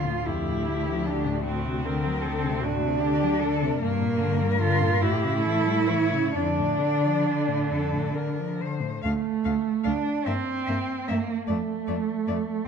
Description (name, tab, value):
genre	classical, lyrical piece for cello ensemble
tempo	43-52 BPM (dotted quarters)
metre	6/8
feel	rubato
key	D minor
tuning	A4 = 440 Hz
part	rich cello	melody	0.0-12.4 s	F4 to F5	-32 LUFS	left 8 dB	none
part	rich cello	second line	0.0-12.7 s	A3 to F4	-26 LUFS	right 5 dB	none
part	rich cello	accompaniment	0.0-12.4 s	F2 to Bb3	-30 LUFS	left 5 dB	none
part	warm cello	bass	0.0-12.4 s	D2 to D3	-30 LUFS	equal	none
room	wet recital hall reverb, RT60 1.4 s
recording	none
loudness	-23 LUFS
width	side -6 dB against mid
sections	0.0-9.0 A section; 9.0-12.7 B section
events	none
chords	0.0 Dm; 1.5 D7; 3.8 Gm; 5.0 A7; 6.3 Dm/F; 9.0 D5; 10.3 Edim/G (rootless); 11.5 Dm (rootless)